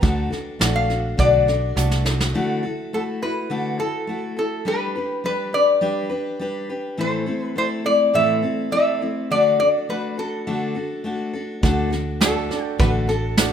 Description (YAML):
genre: honky-tonk and classic country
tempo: 103 BPM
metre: 4/4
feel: straight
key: unclear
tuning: A4 = 440 Hz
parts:
  - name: lap resonator guitar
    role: melody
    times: 0.0-13.5 s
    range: A4 to Bb5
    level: -21 LUFS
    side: left 2 dB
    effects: none
  - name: picked steel-string acoustic guitar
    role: accompaniment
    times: 0.0-13.5 s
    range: A2 to B4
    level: -25 LUFS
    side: left 2 dB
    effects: none
  - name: vintage muted fingered electric bass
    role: bass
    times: 0.0-2.3, 11.6-13.5 s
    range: A1 to D2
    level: -23 LUFS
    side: right 1 dB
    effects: none
  - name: soft brush drum kit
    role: drums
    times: 0.0-2.3, 11.6-13.5 s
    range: hi-hat, kick drum, snare drum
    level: -21 LUFS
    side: right 1 dB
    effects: none
  - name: bright baby grand piano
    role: accompaniment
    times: 0.6-2.2, 12.2-13.5 s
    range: D4 to D5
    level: -30 LUFS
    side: right 9 dB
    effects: none
room: light reverb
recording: minimal, uncompressed stereo recording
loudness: -19 LUFS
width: side -8 dB against mid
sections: 0.0-2.3 A section; 2.3-13.5 B section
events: resonator guitar played with a steel bar solo 0.0-2.3; drum fill 1.8-2.3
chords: 0.0 D; 2.3 Dadd9; 4.7 G; 7.0 Am; 9.3 D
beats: | 0.03 0.61 1.19 1.77 | 2.35 2.93 3.51 4.09 | 4.67 5.25 5.83 6.41 | 6.99 7.57 8.15 8.73 | 9.31 9.89 10.48 11.06 | 11.64 12.22 12.80 13.38